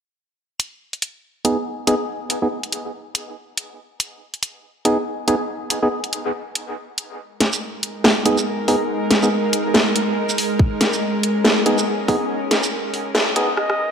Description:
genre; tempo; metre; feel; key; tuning
deep dubstep; 141 BPM; 4/4; swing 58% on 16ths, half-time; G# minor; A4 = 440 Hz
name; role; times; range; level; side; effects
garage drum kit; drums; 0.6-13.8 s; hi-hat, rim click, shaker, snare drum; -19 LUFS; equal; none
percussive organ stab; stabs; 1.4-13.5 s; B3 to G#4; -22 LUFS; right 1 dB; chorus, dub echo
bowed-like drone; sustained chords; 7.7-13.5 s; G#3 to A#4; -22 LUFS; equal; built-in reverb
electronic kick drum; drums; 10.6-12.2 s; none; -16 LUFS; equal; none
bright reedy ney; melody; 13.6-13.9 s; D#5; -21 LUFS; equal; none
room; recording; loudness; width
wet echo chamber reverb, RT60 1.9 s, digital ambience; dark, warm production, high-pass filter; -18 LUFS; side -7 dB against mid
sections
0.4-7.2 A section; 7.2-13.9 B section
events
filter sweep on synth stab 0.4-7.2, 7.2-13.9; build-up 7.2-13.9; drum fill 13.6-13.9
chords
0.4 G#m

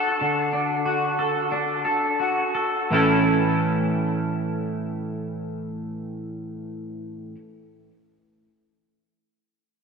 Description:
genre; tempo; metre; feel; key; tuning
rock; 82-96 BPM; 4/4; straight; A major; A4 = 440 Hz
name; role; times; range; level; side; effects
twangy electric guitar; arpeggios; 0.0-7.4 s; A2 to A4; -22 LUFS; equal; analog chorus, digital delay, slapback echo
room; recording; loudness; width
wet lush hall reverb, RT60 2.7 s; big arena sound; -21 LUFS; side -5 dB against mid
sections
0.0-2.9 A section; 2.9-5.8 B section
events
slowing down 0.0-2.9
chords
0.0 D; 2.9 A

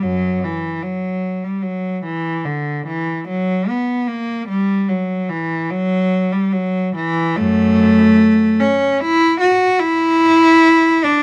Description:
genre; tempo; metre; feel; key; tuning
classical, baroque-style suite movement for unaccompanied cello; 74 BPM; 3/4; rubato; unclear; A4 = 440 Hz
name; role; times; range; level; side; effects
warm cello; solo; 0.0-11.2 s; F#2 to F#4; -16 LUFS; equal; none
room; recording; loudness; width
light reverb; close, detailed microphones; -16 LUFS; mono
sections
0.0-11.2 A section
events
none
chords
none

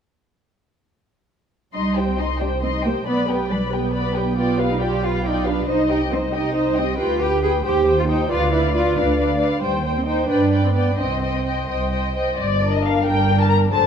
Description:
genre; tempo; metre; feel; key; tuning
quick classical-period movement for string orchestra; 91 BPM (dotted quarters); 6/8; rubato; C minor; A4 = 439 Hz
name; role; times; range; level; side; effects
muted chamber violin section; melody; 1.7-13.9 s; D5 to C6; -26 LUFS; left 4 dB; none
muted studio violin section; second line; 1.7-13.9 s; D4 to Eb5; -25 LUFS; left 4 dB; none
muted studio viola section; accompaniment; 1.7-13.9 s; Eb4 to C5; -26 LUFS; equal; none
muted studio cello section; bass; 1.7-13.9 s; F#2 to Ab4; -22 LUFS; right 2 dB; none
muted studio double bass section; bass; 1.7-13.9 s; F#1 to G2; -24 LUFS; right 2 dB; none
room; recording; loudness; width
wet recital hall reverb, RT60 1.5 s; none; -18 LUFS; side -7 dB against mid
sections
1.7-12.4 A section; 12.4-13.9 B section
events
none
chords
1.7 Cm; 3.1 G/B; 4.4 G7/B; 5.7 Cm; 7.0 G7/D; 7.6 Cm/Eb; 8.3 Bdim/D; 9.6 Cm/Eb; 10.3 G; 11.0 Cm; 12.4 Gm

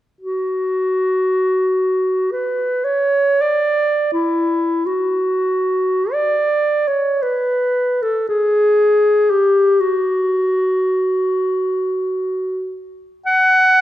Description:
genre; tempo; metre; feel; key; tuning
classical, free, expressive piece for unaccompanied clarinet; 34-63 BPM; 4/4; rubato; unclear; A4 = 443 Hz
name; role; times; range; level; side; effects
clear clarinet; solo; 0.2-13.8 s; E4 to F#5; -15 LUFS; equal; none
room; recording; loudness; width
moderate recital hall reverb, RT60 1.6 s; dark, warm production; -15 LUFS; side -13 dB against mid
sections
0.2-4.9 A section; 4.9-13.8 B section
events
none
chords
none

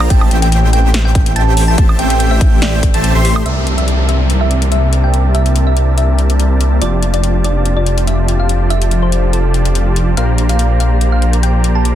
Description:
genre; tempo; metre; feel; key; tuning
future bass; 143 BPM; 4/4; swing 53% on 16ths, half-time; unclear; A4 = 441 Hz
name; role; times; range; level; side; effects
thumb-piano-like synth pluck; melody; 0.0-11.9 s; A4 to A5; -21 LUFS; equal; chorus, phaser, sidechain pumping, dub echo
ethereal airy pad; sustained chords; 0.0-11.9 s; C3 to A5; -25 LUFS; left 1 dB; ensemble chorus, built-in reverb, sidechain pumping
airy dreamy lead; arpeggios; 0.0-3.4 s; G5 to C6; -25 LUFS; equal; chorus, sidechain pumping, digital delay
supersaw chords; riff; 0.0-11.9 s; F3 to C6; -20 LUFS; right 1 dB; sidechain pumping, low-pass filter
wide detuned saw bass; bass; 0.0-11.9 s; F1 to C2; -13 LUFS; equal; chorus, sidechain pumping
big-room dance drum kit; drums; 0.0-11.9 s; hi-hat, snare drum, woodblock; -22 LUFS; left 3 dB; studio reverb
electronic kick drum; drums; 0.1-2.9 s; none; -11 LUFS; equal; studio reverb
downlifter; sound effects; 3.5-6.8 s; none; -24 LUFS; left 1 dB; none
room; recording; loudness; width
digital ambience; dense, heavily limited modern master; -10 LUFS; side -11 dB against mid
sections
0.0-3.5 A section; 3.5-11.9 B section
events
drop 0.0-3.5; kick drops out 3.0-3.5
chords
0.1 Am7; 3.5 C13; 6.8 F69; 10.2 Bb69

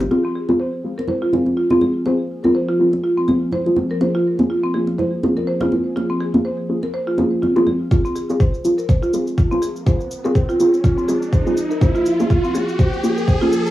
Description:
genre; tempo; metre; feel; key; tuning
afro house; 123 BPM; 4/4; swing 56% on 16ths; F minor; A4 = 438 Hz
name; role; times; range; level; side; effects
warm analog pad; sustained chords; 0.0-13.7 s; F3 to Ab4; -29 LUFS; left 1 dB; chorus, sidechain pumping, cassette tape
shaker; drums; 0.0-0.1, 7.9-13.7 s; none; -40 LUFS; left 1 dB; low-pass filter on perc, studio reverb, low-pass filter on hats, low-pass filter on snare, low-pass filter on toms
congas; percussion; 0.0-7.8 s; none; -21 LUFS; right 1 dB; none
buzzing marimba with medium mallets; arpeggios; 0.1-13.5 s; C4 to C5; -22 LUFS; right 1 dB; sidechain pumping, low-pass filter, cassette tape, tape echo
deep mellow chord stab; stabs; 0.1-13.5 s; Ab3 to Ab4; -20 LUFS; equal; chorus, sidechain pumping, cassette tape, tape echo
electronic kick drum; drums; 7.9-13.4 s; none; -16 LUFS; equal; studio reverb
riser; sound effects; 9.9-13.7 s; none; -25 LUFS; right 1 dB; none
room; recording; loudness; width
wet booth ambience, RT60 0.2 s; home recording on cassette, small room ambience; -16 LUFS; side -15 dB against mid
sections
0.1-7.9 A section; 7.9-13.7 B section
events
build-up 7.9-13.7; filter sweep 7.9-13.7; riser 9.9-13.7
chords
0.1 Fm; 4.0 Bbm7; 7.9 Fm; 11.8 Bbm7

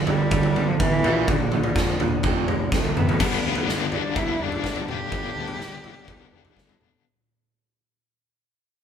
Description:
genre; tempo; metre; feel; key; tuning
quiet-loud alternative rock; 125 BPM; 4/4; straight; G mixolydian; A4 = 440 Hz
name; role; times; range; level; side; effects
rich cello; melody; 0.0-6.8 s; D3 to G4; -27 LUFS; left 1 dB; none
electric guitar through a small old amp; arpeggios; 0.0-7.0 s; F2 to D4; -33 LUFS; left 1 dB; none
crunchy overdriven guitar; riff; 0.0-3.2 s; F2 to Bb3; -26 LUFS; right 8 dB; none
fuzz picked electric bass; bass; 0.0-6.9 s; E1 to F2; -30 LUFS; equal; overdrive
big rock drum kit; drums; 0.1-6.9 s; crash cymbal, kick drum, snare drum, toms; -25 LUFS; left 1 dB; none
cranked stack guitar; riff; 3.2-7.0 s; G2 to D4; -29 LUFS; left 9 dB; overdrive, tremolo
room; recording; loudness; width
moderate large studio reverb, RT60 1.4 s; band playing live in one room; -20 LUFS; side -8 dB against mid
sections
0.0-3.2 A section; 3.2-7.0 B section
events
drum fill 2.7-3.2; fade-out 3.2-7.0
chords
0.0 G; 1.0 Bb; 2.2 F; 3.2 G

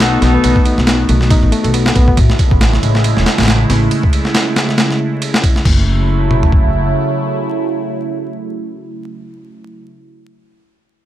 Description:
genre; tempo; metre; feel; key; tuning
breakbeat, breaks; 138 BPM; 4/4; swing 56% on 16ths; F# dorian; A4 = 440 Hz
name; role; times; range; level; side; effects
phased analog pad; sustained chords; 0.0-9.9 s; C#3 to F#4; -18 LUFS; right 1 dB; phaser, chorus, vintage 12-bit sampler grit, sidechain pumping
reed electric piano; riff; 0.0-2.2 s; A3 to A4; -17 LUFS; left 1 dB; overdrive, fast tremolo, tube saturation, digital delay
warm horn section; stabs; 0.0-0.6 s; B3 to A4; -21 LUFS; left 1 dB; digital delay
upright bass; bass; 0.0-6.9 s; E1 to B1; -14 LUFS; equal; none
breakbeat sampler-style drum kit; drums; 0.0-6.6 s; crash cymbal, kick drum, ride cymbal, snare drum, toms; -14 LUFS; equal; none
room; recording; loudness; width
little or no reverb; vinyl crackle; -11 LUFS; side -12 dB against mid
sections
0.0-5.7 A section; 5.7-9.1 B section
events
drop 0.0-5.7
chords
0.0 B7; 2.2 Amaj7; 5.7 F#m7

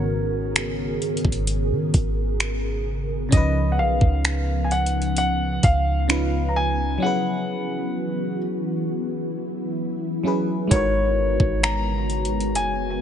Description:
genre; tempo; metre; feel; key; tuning
contemporary R&B; 65 BPM; 4/4; straight; G# minor; A4 = 439 Hz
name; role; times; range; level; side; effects
warm grand piano; melody; 0.0-13.0 s; C#5 to A#5; -26 LUFS; left 1 dB; digital delay
FM electric piano; accompaniment; 0.0-13.0 s; G#2 to C#5; -27 LUFS; left 1 dB; chorus, phaser
ethereal airy pad; sustained chords; 0.0-13.0 s; C#3 to A#4; -28 LUFS; equal; ensemble chorus, built-in reverb, sidechain pumping
clean 808-style bass; bass; 0.0-13.0 s; F#1 to D#3; -24 LUFS; equal; none
smooth R&B drum kit; drums; 0.6-12.8 s; finger snaps, hi-hat, kick drum; -22 LUFS; equal; none
room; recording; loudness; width
light reverb, digital ambience; nothing above 10.3 kHz; -20 LUFS; side -9 dB against mid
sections
0.0-13.0 A section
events
break 7.0-10.7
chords
0.0 G#m11; 3.3 C#7; 7.0 F#7sus4; 10.7 G#m11

